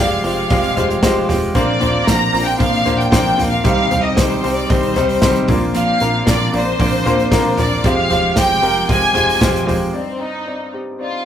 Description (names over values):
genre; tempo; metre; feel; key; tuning
piano-driven pop; 114 BPM; 4/4; straight; C minor; A4 = 440 Hz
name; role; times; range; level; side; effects
rich studio violin section; melody; 0.0-11.2 s; C4 to Bb5; -18 LUFS; equal; none
clear upright piano; accompaniment; 0.0-11.2 s; G2 to Eb5; -19 LUFS; left 2 dB; none
warm studio string section; sustained chords; 0.0-9.9 s; C3 to F4; -32 LUFS; left 1 dB; none
clean electric guitar; riff; 0.0-9.9 s; F2 to G4; -23 LUFS; right 3 dB; none
plucky analog bass; bass; 0.0-9.9 s; F1 to C2; -24 LUFS; equal; none
natural country drum kit; drums; 0.2-9.8 s; hi-hat, kick drum, snare drum, toms; -19 LUFS; equal; none
room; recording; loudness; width
wet small room ambience, RT60 0.5 s; rough rehearsal-room recording; -13 LUFS; side -9 dB against mid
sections
0.0-9.9 A section; 9.9-11.2 B section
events
none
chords
0.0 Fmadd9; 1.6 Bbadd9; 3.6 Cm; 5.5 Bbadd9; 7.8 Fmadd9; 9.9 Cmadd9